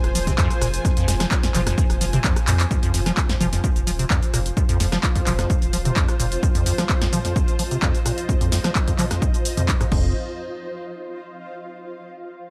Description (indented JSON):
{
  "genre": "acid house",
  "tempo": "129 BPM",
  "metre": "4/4",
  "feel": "straight",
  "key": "F minor pentatonic",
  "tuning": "A4 = 440 Hz",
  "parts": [
    { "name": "warm analog pad", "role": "sustained chords", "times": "0.0-2.7 s", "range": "F3 to C5", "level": "-36 LUFS", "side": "equal", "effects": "chorus, sidechain pumping" },
    { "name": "round analog bass", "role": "bass", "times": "0.0-6.4, 9.9-10.1 s", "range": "Eb1 to F2", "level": "-28 LUFS", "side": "equal", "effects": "sidechain pumping" },
    { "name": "punchy analog drum machine", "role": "drums", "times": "0.0-10.0 s", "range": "crash cymbal, handclaps, hi-hat, rim click, shaker, snare drum, toms", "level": "-28 LUFS", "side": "equal", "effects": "none" },
    { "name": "granular cloud pad", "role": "texture", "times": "0.0-12.0 s", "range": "F4 to Ab5", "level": "-33 LUFS", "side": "equal", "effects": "built-in reverb, sidechain pumping" },
    { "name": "acid bass, square", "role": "riff", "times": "0.2-10.1 s", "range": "F2 to F3", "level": "-27 LUFS", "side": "equal", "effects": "overdrive, lush chorus, sidechain pumping, tape echo" },
    { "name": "electronic kick drum", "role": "drums", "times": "0.3-10.0 s", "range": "none", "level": "-24 LUFS", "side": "equal", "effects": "none" }
  ],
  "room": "little or no reverb",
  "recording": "none",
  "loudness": "-21 LUFS",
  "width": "mono",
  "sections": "0.0-2.7 A section; 2.7-10.2 B section; 10.2-12.0 C section",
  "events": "drop 0.0-2.7; drum fill 2.5; filter sweep on acid bass 2.7-10.2",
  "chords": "0.0 Fm; 2.7 F5"
}